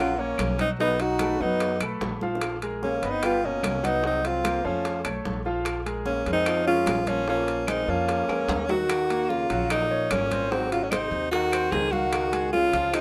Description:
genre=Afro-Cuban jazz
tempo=148 BPM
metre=4/4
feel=straight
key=unclear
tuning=A4 = 440 Hz
part: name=clear alto saxophone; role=melody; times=0.0-13.0 s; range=C4 to Ab4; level=-28 LUFS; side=equal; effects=none
part: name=breathy trombone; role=second line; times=0.0-13.0 s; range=Ab2 to D#4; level=-33 LUFS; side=equal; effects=none
part: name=clear concert grand piano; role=accompaniment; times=0.0-13.0 s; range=B2 to G5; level=-33 LUFS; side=equal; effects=none
part: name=upright bass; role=bass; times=0.0-13.0 s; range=G1 to F#2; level=-36 LUFS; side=equal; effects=none
part: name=congas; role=percussion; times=0.2-13.0 s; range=none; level=-38 LUFS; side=equal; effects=none
part: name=bongos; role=percussion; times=0.4-13.0 s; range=none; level=-39 LUFS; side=equal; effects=none
part: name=claves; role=percussion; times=0.4-13.0 s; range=none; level=-39 LUFS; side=equal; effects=none
part: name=timbales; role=percussion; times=0.4-13.0 s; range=none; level=-37 LUFS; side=equal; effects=none
room=light reverb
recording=none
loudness=-25 LUFS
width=mono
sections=0.0-8.9 A section; 8.9-13.0 B section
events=drum fill 2.2, 8.3-8.9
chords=0.0 Ebm7 (rootless); 0.8 B7; 2.4 Bb5; 3.2 Gaug; 4.0 Ebm13/C; 4.8 Faug; 5.7 Bbm7; 8.9 Ebm7; 10.5 Ab7; 12.1 Dbadd9

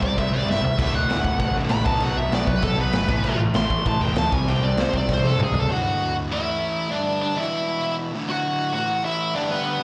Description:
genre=punk rock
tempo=196 BPM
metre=4/4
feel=straight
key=D major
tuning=A4 = 439 Hz
part: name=high-gain lead guitar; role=melody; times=0.0-9.8 s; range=B3 to C6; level=-27 LUFS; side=equal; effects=distortion, slapback echo, delay
part: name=distorted electric guitar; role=riff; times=0.0-5.7 s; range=D2 to C4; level=-34 LUFS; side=equal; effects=none
part: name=distorted electric guitar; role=riff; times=0.0-5.5 s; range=D2 to C4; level=-34 LUFS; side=equal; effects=distortion, slapback echo
part: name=sludgy distorted guitar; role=riff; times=0.0-9.8 s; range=D2 to C4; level=-31 LUFS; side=equal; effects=overdrive, slapback echo
part: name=overdriven picked electric bass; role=bass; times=0.0-5.6 s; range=D1 to C3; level=-28 LUFS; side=equal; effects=none
part: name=raw garage drum kit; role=drums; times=0.0-5.6 s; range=crash cymbal, kick drum, snare drum, toms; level=-27 LUFS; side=equal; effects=none
room=little or no reverb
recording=live gig heard through the venue's PA, recital hall reverb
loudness=-22 LUFS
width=mono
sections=0.0-5.7 A section; 5.7-9.8 B section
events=lead electric guitar solo 0.0-5.7; drum fill 0.5-0.8, 5.1-5.7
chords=0.0 C5; 0.8 D; 1.9 B5; 3.1 A5; 4.3 C5; 5.7 D; 6.3 A5; 6.9 G5; 7.4 E5; 8.1 D; 8.7 A5; 9.3 G

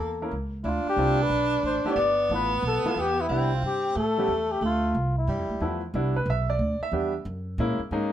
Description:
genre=jazz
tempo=182 BPM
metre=4/4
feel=swing 64% on 8ths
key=C major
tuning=A4 = 440 Hz
part: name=breathy flugelhorn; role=melody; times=0.0-5.8 s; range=E4 to D5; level=-26 LUFS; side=left 3 dB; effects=none
part: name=breathy tenor saxophone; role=second line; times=0.0-5.8 s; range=G3 to D4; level=-29 LUFS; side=right 3 dB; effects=none
part: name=upright bass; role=bass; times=0.0-8.1 s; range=G1 to A#2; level=-29 LUFS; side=right 1 dB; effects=none
part: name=clear concert grand piano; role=accompaniment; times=0.2-8.1 s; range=F3 to E5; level=-29 LUFS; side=right 1 dB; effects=none
room=moderate studio reverb, RT60 0.7 s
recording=minimal, uncompressed stereo recording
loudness=-23 LUFS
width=side -11 dB against mid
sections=0.0-5.9 A section; 5.9-8.1 B section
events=none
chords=0.0 A(b9); 0.7 Dm7; 2.0 G13; 3.3 Cmaj9; 4.0 A7; 4.6 Dm7; 5.3 G13; 5.9 Cmaj9; 7.3 F#9

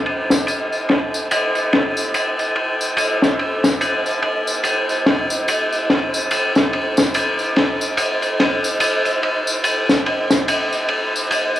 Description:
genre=trip hop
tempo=72 BPM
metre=4/4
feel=swing 59% on 16ths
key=none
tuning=none
part: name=crunchy breakbeat drum kit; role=drums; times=0.1-11.5 s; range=ride cymbal, snare drum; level=-16 LUFS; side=equal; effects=low-pass filter on cymbals, cassette tape, low-pass filter on snare, low-pass filter on room
part: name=tambourine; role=percussion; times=0.3-11.6 s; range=none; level=-27 LUFS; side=left 2 dB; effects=none
room=light reverb, small room ambience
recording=home recording on cassette, vinyl crackle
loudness=-16 LUFS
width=side -12 dB against mid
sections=0.0-11.6 A section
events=none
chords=none

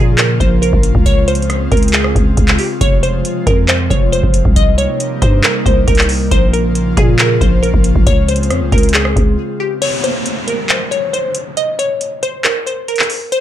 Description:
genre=hip hop, trap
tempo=137 BPM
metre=4/4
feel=half-time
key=unclear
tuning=A4 = 440 Hz
part: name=glassy wavetable pluck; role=melody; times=0.0-13.4 s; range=G4 to Eb5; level=-18 LUFS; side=equal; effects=chorus
part: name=airy breathy pad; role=sustained chords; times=0.0-9.8 s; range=C3 to F4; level=-20 LUFS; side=left 1 dB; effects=chorus
part: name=growling 808-style bass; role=bass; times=0.0-9.4 s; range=F1 to Bb2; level=-15 LUFS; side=equal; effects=none
part: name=booming analog drum machine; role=drums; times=0.2-13.4 s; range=crash cymbal, handclaps, hi-hat, kick drum, rim click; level=-14 LUFS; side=equal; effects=vintage 12-bit sampler grit
part: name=downlifter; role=sound effects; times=9.8-13.3 s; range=none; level=-24 LUFS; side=right 2 dB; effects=none
room=digital ambience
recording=none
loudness=-11 LUFS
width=side -11 dB against mid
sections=0.0-9.8 A section; 9.8-13.4 B section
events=break 9.4-9.8, 9.8-13.4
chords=0.0 Bbm; 1.1 Dbmaj7; 2.8 Fm; 4.6 Cm7; 6.3 Bbm; 8.1 Dbmaj7; 9.8 N.C.

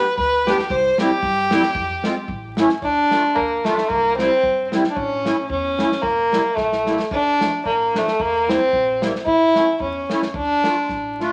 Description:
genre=alpine folk, alpine dance band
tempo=112 BPM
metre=2/4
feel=swing 55% on 8ths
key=D minor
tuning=A4 = 438 Hz
part: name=dark fiddle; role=melody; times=0.0-11.2 s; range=A3 to C5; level=-20 LUFS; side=equal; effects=none
part: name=accordion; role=accompaniment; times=0.0-11.3 s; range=F3 to G4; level=-25 LUFS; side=equal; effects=light tremolo tuning
part: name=upright bass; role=bass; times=0.2-11.3 s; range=E1 to G2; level=-38 LUFS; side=equal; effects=none
part: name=natural country drum kit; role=drums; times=0.2-11.3 s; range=kick drum, snare drum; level=-30 LUFS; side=equal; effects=none
room=wet studio reverb, RT60 0.7 s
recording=vinyl crackle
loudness=-19 LUFS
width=mono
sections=0.0-2.8 A section; 2.8-11.3 B section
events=drum fill 6.6-7.1, 11.2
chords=0.0 G; 0.7 C; 1.8 Fm; 2.3 A7; 2.8 Dm; 3.9 C; 5.0 A; 6.0 Edim; 7.1 Dm; 8.2 Edim; 9.3 A; 10.3 Dm

